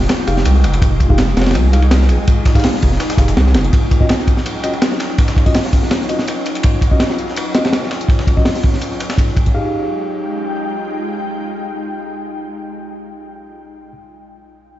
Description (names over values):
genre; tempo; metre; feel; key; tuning
drum and bass, jungle; 165 BPM; 4/4; swing 53% on 16ths; unclear; A4 = 440 Hz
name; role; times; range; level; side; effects
ethereal airy pad; sustained chords; 0.0-13.2 s; Gb3 to G5; -23 LUFS; equal; ensemble chorus, built-in reverb
saturated sub bass; bass; 0.0-3.7 s; F1 to C2; -13 LUFS; equal; none
crunchy breakbeat drum kit; drums; 0.0-9.5 s; hi-hat, kick drum, ride cymbal, snare drum; -14 LUFS; equal; none
dusty soul sampler-style drum kit; drums; 0.1-9.5 s; hi-hat, snare drum, tambourine; -29 LUFS; left 2 dB; high-pass filter on perc, high-pass filter on snare, high-pass filter on hats
mellow tine electric piano; stabs; 0.3-13.9 s; Db4 to F5; -24 LUFS; left 1 dB; low-pass filter, dub echo
room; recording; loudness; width
light reverb, small room ambience; played on a big sound system in a bare room, stone room reverb, nothing above 7.8 kHz, faint mains hum; -13 LUFS; side -14 dB against mid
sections
0.0-9.5 A section; 9.5-12.5 B section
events
filter sweep on tine electric piano 0.0-9.5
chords
0.0 Fm9; 3.7 Ebm9; 9.5 Fm9